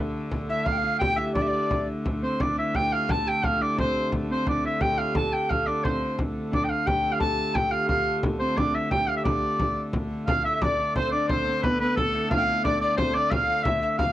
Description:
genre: medieval dance.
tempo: 176 BPM.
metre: 3/4.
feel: straight.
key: D dorian.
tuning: A4 = 439 Hz.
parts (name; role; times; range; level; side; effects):
Celtic harp; second line; 0.0-14.1 s; A3 to A4; -31 LUFS; right 1 dB; cassette tape.
clear hurdy-gurdy; drone; 0.0-14.1 s; D3 to A3; -31 LUFS; equal; cassette tape.
frame drum; percussion; 0.3-14.1 s; none; -29 LUFS; equal; none.
clear shawm; melody; 0.5-14.1 s; A4 to A5; -25 LUFS; right 1 dB; cassette tape.
breathy alto recorder; second line; 0.5-1.9, 10.3-14.1 s; A4 to G5; -30 LUFS; left 3 dB; cassette tape.
room: wet booth ambience, RT60 0.2 s.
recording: home recording on cassette.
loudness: -22 LUFS.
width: side -13 dB against mid.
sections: 0.0-2.1 A section; 2.1-10.3 B section; 10.3-14.1 C section.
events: speeding up 0.0-14.1.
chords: none.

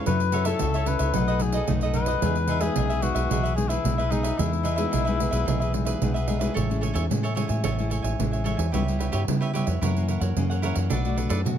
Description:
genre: samba and choro.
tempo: 111 BPM.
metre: 4/4.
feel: straight.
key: E major, A major from 6.6 s.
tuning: A4 = 439 Hz.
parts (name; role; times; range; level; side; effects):
cavaquinho; accompaniment; 0.0-11.4 s; D4 to G#5; -31 LUFS; right 3 dB; none.
nylon-string guitar; accompaniment; 0.0-11.6 s; F#2 to A4; -29 LUFS; left 4 dB; none.
mellow cor anglais; second line; 0.1-6.0 s; D#4 to B4; -28 LUFS; left 8 dB; none.
vintage muted fingered electric bass; bass; 0.1-11.6 s; A1 to C#3; -26 LUFS; equal; none.
pandeiro; percussion; 0.1-11.6 s; none; -30 LUFS; right 8 dB; none.
room: light reverb.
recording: close, detailed microphones.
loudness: -22 LUFS.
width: side -9 dB against mid.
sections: 0.0-6.6 A section; 6.6-11.6 B section.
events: cor anglais solo 0.0-6.6.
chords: 0.1 F#m7; 1.1 B7; 2.2 Emaj7; 6.6 Amaj7; 8.7 C#m7b5; 9.8 F#7; 10.9 Bm7.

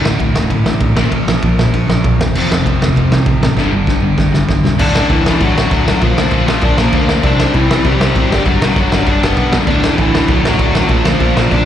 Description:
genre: punk rock.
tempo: 196 BPM.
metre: 4/4.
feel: straight.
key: unclear.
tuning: A4 = 440 Hz.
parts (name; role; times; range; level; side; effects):
crunchy overdriven guitar; riff; 0.0-4.8, 9.7-11.7 s; D2 to Bb3; -18 LUFS; right 8 dB; slapback echo.
distorted electric guitar; riff; 0.0-11.7 s; D2 to C4; -19 LUFS; left 9 dB; distortion.
distorted electric guitar; riff; 0.0-11.7 s; D2 to C4; -21 LUFS; right 1 dB; distortion, slapback echo.
picked electric bass; bass; 0.0-11.6 s; D1 to F2; -18 LUFS; equal; none.
loose indie drum kit; drums; 0.1-11.6 s; crash cymbal, kick drum, ride cymbal, snare drum; -15 LUFS; equal; none.
dark smooth lead guitar; melody; 4.8-11.7 s; E3 to D5; -17 LUFS; left 1 dB; overdrive, slapback echo.
room: little or no reverb.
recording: live gig heard through the venue's PA, recital hall reverb.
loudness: -11 LUFS.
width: side -10 dB against mid.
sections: 0.0-4.8 A section; 4.8-11.7 B section.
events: drum fill 3.6-4.8.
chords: 0.0 D5; 1.0 Bb5; 2.3 F5; 3.6 G5; 4.8 D; 6.0 Bb; 7.2 C; 8.3 G; 9.7 D; 10.9 Bb.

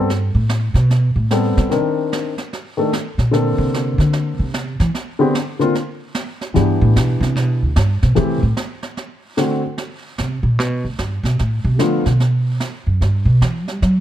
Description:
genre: jazz piano trio.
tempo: 149 BPM.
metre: 4/4.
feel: swing 64% on 8ths.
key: G major.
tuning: A4 = 444 Hz.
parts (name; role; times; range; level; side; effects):
warm grand piano; melody; 0.0-12.0 s; D3 to Bb4; -18 LUFS; left 2 dB; none.
upright bass; bass; 0.0-14.0 s; D2 to G3; -16 LUFS; right 1 dB; none.
brushed snare drum and snare drum; drums; 0.1-14.0 s; none; -27 LUFS; right 3 dB; none.
room: light reverb.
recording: dark, warm production.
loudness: -15 LUFS.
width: side -11 dB against mid.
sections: 0.0-9.8 A section; 9.8-14.0 A section.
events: upright bass solo 0.0-14.0.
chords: 0.1 Am9; 1.7 Cm9; 2.5 Bbmaj7(no3); 3.3 Bbmaj9; 4.9 D7(no3); 5.7 N.C.; 6.6 G6; 8.2 Am7; 9.0 D7; 9.8 G; 11.4 Bm7b5; 12.2 F#sus4; 13.0 A7sus2 (rootless).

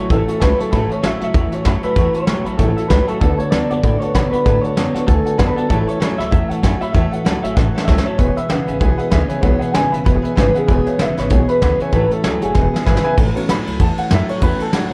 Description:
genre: rockabilly.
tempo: 193 BPM.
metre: 4/4.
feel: swing 58% on 8ths.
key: A major.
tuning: A4 = 440 Hz.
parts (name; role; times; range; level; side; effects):
electric guitar through a small old amp; melody; 0.0-12.8 s; G#4 to G#5; -24 LUFS; equal; vibrato effect, plate reverb, tape echo.
clear upright piano; accompaniment; 0.0-14.9 s; F#3 to E6; -29 LUFS; equal; plate reverb.
picked acoustic archtop guitar; accompaniment; 0.0-14.9 s; A2 to A4; -29 LUFS; equal; plate reverb.
electric guitar at the edge of break-up; riff; 0.0-14.9 s; E2 to B3; -24 LUFS; equal; ensemble chorus.
upright bass; bass; 0.0-14.9 s; E1 to B2; -22 LUFS; equal; none.
soft brush drum kit; drums; 0.1-14.8 s; hi-hat, kick drum, ride cymbal, snare drum; -21 LUFS; equal; none.
room: moderate studio ambience, RT60 0.5 s.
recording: none.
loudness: -16 LUFS.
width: mono.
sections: 0.0-13.2 A section; 13.2-14.9 B section.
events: drum fill 7.6-8.2, 12.6-13.2; upright piano solo 13.2-14.9.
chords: 0.0 A6; 3.2 D6; 5.7 A6; 8.2 E6; 11.9 A6; 12.6 E6; 13.2 A6.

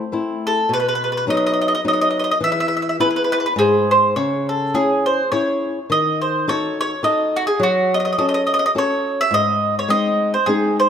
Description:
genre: italian folk, Italian serenade.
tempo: 105 BPM.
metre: 3/4.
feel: swing 55% on 8ths.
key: E major, C# harmonic minor from 4.2 s.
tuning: A4 = 440 Hz.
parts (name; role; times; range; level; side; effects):
mandolin; melody; 0.0-10.9 s; F#4 to E5; -18 LUFS; right 1 dB; none.
flamenco guitar; accompaniment; 0.0-10.9 s; G#2 to A4; -21 LUFS; left 2 dB; none.
room: moderate recital hall reverb, RT60 1.7 s.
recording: none.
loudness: -16 LUFS.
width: side -8 dB against mid.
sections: 0.0-4.2 A section; 4.2-10.9 B section.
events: none.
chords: 0.0 Am; 0.7 B; 2.4 E; 3.6 N.C.; 4.2 C#m; 5.9 D#dim; 7.6 F#m; 9.3 G#.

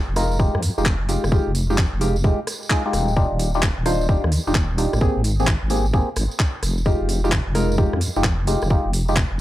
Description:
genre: UK garage, two-step garage.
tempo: 130 BPM.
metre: 4/4.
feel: swing 66% on 16ths.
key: F dorian.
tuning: A4 = 441 Hz.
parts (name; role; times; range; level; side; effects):
deep soft wobble bass; bass; 0.1-9.4 s; Eb1 to F2; -22 LUFS; equal; chorus.
percussive organ stab; stabs; 0.2-9.2 s; Ab3 to C5; -23 LUFS; equal; chorus, phaser, tape echo.
garage drum kit; drums; 0.2-9.3 s; handclaps, hi-hat, rim click; -27 LUFS; equal; none.
tambourine; percussion; 0.2-9.3 s; none; -35 LUFS; right 3 dB; none.
electronic kick drum; drums; 0.4-9.3 s; none; -20 LUFS; equal; none.
room: digital ambience.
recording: dry, gritty hardware recording.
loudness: -18 LUFS.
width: side -14 dB against mid.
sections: 0.0-9.4 A section.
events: none.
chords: 0.0 Fm9; 3.2 Ebmaj9; 5.0 Abmaj9; 6.6 Fm9.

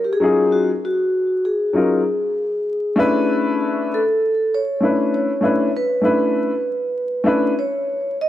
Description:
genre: hip hop.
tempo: 98 BPM.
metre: 4/4.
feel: swing 66% on 16ths.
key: unclear.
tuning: A4 = 440 Hz.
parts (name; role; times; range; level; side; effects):
vibraphone with soft mallets; melody; 0.0-8.3 s; Gb4 to Eb5; -20 LUFS; equal; tape echo.
warm upright piano; accompaniment; 0.2-7.5 s; Gb3 to B4; -18 LUFS; left 2 dB; none.
room: light reverb, small room ambience.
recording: vinyl crackle.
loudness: -17 LUFS.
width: side -12 dB against mid.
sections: 0.0-8.3 A section.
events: none.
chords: 0.0 Ebm11; 3.0 Bm11.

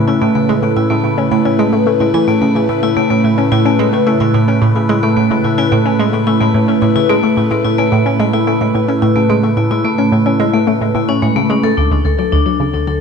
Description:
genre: ambient, sequencer-driven space music.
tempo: 109 BPM.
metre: 4/4.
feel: straight.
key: A major.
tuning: A4 = 440 Hz.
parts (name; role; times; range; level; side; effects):
phased analog pad; sustained chords; 0.0-13.0 s; A2 to G#5; -16 LUFS; right 1 dB; phaser, chorus.
vibraphone with medium hard mallets; arpeggios; 0.0-12.9 s; G#3 to A4; -16 LUFS; moving between left 7 dB and right 1 dB; auto-pan, low-pass filter, ping-pong delay.
hollow square pluck; riff; 0.0-13.0 s; D2 to C#4; -16 LUFS; right 1 dB; chorus, phaser, ping-pong delay.
analog drone; bass; 12.6-13.0 s; D2; -24 LUFS; equal; chorus.
room: wet concert hall reverb, RT60 2.1 s.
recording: none.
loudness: -11 LUFS.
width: side -6 dB against mid.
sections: 0.0-11.8 A section; 11.8-13.0 B section.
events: none.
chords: 0.0 Amaj7; 11.8 Dmaj7.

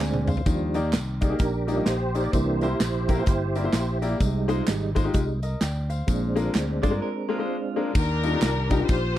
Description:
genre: uptempo gospel.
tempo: 128 BPM.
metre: 4/4.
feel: swing 61% on 8ths.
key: Eb major.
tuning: A4 = 438 Hz.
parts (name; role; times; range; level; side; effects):
bright upright piano; accompaniment; 0.0-9.0 s; Bb2 to Ab5; -29 LUFS; left 4 dB; none.
tonewheel organ; sustained chords; 0.0-7.9 s; E3 to D5; -28 LUFS; right 3 dB; slow rotary speaker, overdrive, chorus vibrato.
fingered electric bass; bass; 0.0-9.2 s; G1 to G2; -27 LUFS; equal; none.
handclaps and tambourine; percussion; 0.0-9.0 s; none; -40 LUFS; right 2 dB; none.
modern studio drum kit; drums; 0.1-9.0 s; crash cymbal, hi-hat, kick drum, ride cymbal, snare drum, toms; -24 LUFS; equal; none.
direct-recorded clean electric guitar; second line; 6.8-7.9 s; F4 to D5; -34 LUFS; right 12 dB; none.
dark studio string section; melody; 7.9-9.2 s; D4 to C5; -27 LUFS; left 2 dB; none.
room: small room ambience.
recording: dry, close 1970s-style studio recording.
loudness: -22 LUFS.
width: side -13 dB against mid.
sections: 0.0-8.0 A section; 8.0-9.2 B section.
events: drum fill 0.0-0.5; tonewheel organ solo 0.0-8.0; break 7.0-8.0.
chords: 0.5 Ebmaj7; 2.3 C7; 4.2 Fm7; 6.1 Bb7; 8.0 Ebmaj9.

